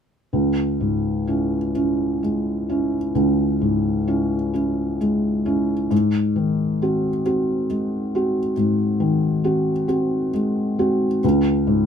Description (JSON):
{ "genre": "classical, romantic nocturne for solo piano", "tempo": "42-46 BPM (dotted quarters)", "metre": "12/8", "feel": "rubato", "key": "C# minor", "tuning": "A4 = 445 Hz", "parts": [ { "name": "felt-muted upright piano", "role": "solo", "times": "0.3-11.9 s", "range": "C#2 to F#4", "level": "-18 LUFS", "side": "equal", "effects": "none" } ], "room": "little or no reverb", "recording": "close, detailed microphones", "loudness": "-19 LUFS", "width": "side -8 dB against mid", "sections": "0.3-11.9 A section", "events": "none", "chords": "0.3 C#m; 5.9 G#7; 11.2 C#5", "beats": "| 0.32 1.74 3.15 4.54 | 5.91 7.25 8.57 9.90 | 11.23" }